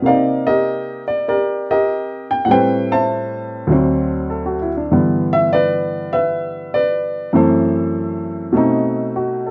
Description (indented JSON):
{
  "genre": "solo jazz",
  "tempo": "99 BPM",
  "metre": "4/4",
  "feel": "swing 67% on 8ths",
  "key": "G major",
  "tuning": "A4 = 445 Hz",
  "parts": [
    { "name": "warm upright piano", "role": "solo", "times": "0.0-9.5 s", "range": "D2 to A5", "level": "-18 LUFS", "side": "equal", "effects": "none" }
  ],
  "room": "moderate studio reverb, RT60 0.6 s",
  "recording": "dark, warm production",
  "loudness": "-18 LUFS",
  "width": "mono",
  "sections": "0.0-9.5 A section",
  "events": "none",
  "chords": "0.1 Cm9; 2.5 Am9; 3.7 D7; 4.9 G6; 7.3 F#m7b5; 8.5 B7b9",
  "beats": "| 0.06 0.66 1.27 1.88 | 2.48 3.09 3.69 4.30 | 4.91 5.51 6.12 6.73 | 7.33 7.94 8.55 9.15"
}